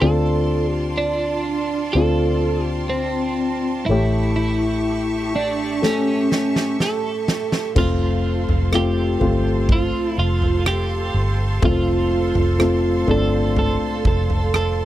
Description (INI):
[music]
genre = pop ballad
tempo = 62 BPM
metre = 4/4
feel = straight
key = unclear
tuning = A4 = 440 Hz
[part]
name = twelve-string electric guitar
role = melody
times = 0.0-14.8 s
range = C4 to A4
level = -23 LUFS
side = right 3 dB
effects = harmonic tremolo
[part]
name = dark concert grand piano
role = accompaniment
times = 0.0-14.8 s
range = A2 to C#5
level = -23 LUFS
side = left 3 dB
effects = none
[part]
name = bright studio string section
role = sustained chords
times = 0.0-14.8 s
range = F4 to C#6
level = -30 LUFS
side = right 3 dB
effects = none
[part]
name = vintage muted fingered electric bass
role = bass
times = 0.0-14.8 s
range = F1 to D2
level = -22 LUFS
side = right 1 dB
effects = none
[part]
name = huge arena drum kit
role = drums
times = 5.8-14.8 s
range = crash cymbal, kick drum, rim click, snare drum, toms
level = -23 LUFS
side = equal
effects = none
[sound]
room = little or no reverb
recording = dry, close 1970s-style studio recording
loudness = -17 LUFS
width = side -13 dB against mid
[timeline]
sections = 0.0-7.8 A section; 7.8-14.8 B section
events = drum fill 5.8-7.8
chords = 0.0 Dm7; 3.9 A7; 7.8 F